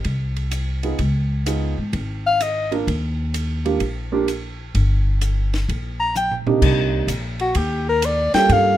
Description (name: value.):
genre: jazz, small-group swing and bop.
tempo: 128 BPM.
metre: 4/4.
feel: swing 67% on 8ths.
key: Eb major.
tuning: A4 = 440 Hz.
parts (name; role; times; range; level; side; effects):
compact cocktail drum kit; drums; 0.0-8.6 s; crash cymbal, hi-hat, kick drum, ride cymbal, snare drum, toms; -27 LUFS; equal; none.
upright bass; bass; 0.1-8.8 s; G1 to Ab2; -22 LUFS; equal; none.
warm grand piano; accompaniment; 0.8-8.8 s; C3 to Bb4; -21 LUFS; right 5 dB; none.
mellow soprano saxophone; melody; 2.3-2.7, 6.0-8.8 s; F#4 to Bb5; -18 LUFS; left 2 dB; none.
room: light reverb.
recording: minimal, uncompressed stereo recording.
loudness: -18 LUFS.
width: side -13 dB against mid.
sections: 0.0-6.6 A section; 6.6-8.8 B section.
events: drum fill 6.1-6.6.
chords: 0.0 Ab; 1.0 Db9; 2.9 Eb; 6.6 Cm9.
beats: 0.05 0.52 | 0.99 1.46 1.92 2.39 | 2.86 3.33 3.80 4.27 | 4.74 5.21 5.68 6.15 | 6.62 7.08 7.55 8.02 | 8.49.